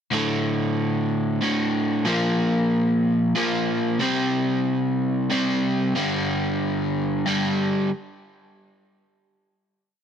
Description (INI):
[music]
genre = rock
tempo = 62 BPM (dotted quarters)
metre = 6/8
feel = straight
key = D minor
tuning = A4 = 439 Hz
[part]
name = overdriven electric guitar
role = solo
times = 0.1-7.9 s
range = D2 to C4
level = -20 LUFS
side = equal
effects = none
[sound]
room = digital ambience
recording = none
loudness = -20 LUFS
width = side -8 dB against mid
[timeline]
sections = 0.1-7.9 A section; 7.9-10.0 final hit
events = none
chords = 0.1 D5; 2.1 Bb5; 4.0 C5; 6.0 G5; 7.9 N.C.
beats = | 0.12 1.09 | 2.07 3.04 | 4.02 4.99 | 5.97 6.94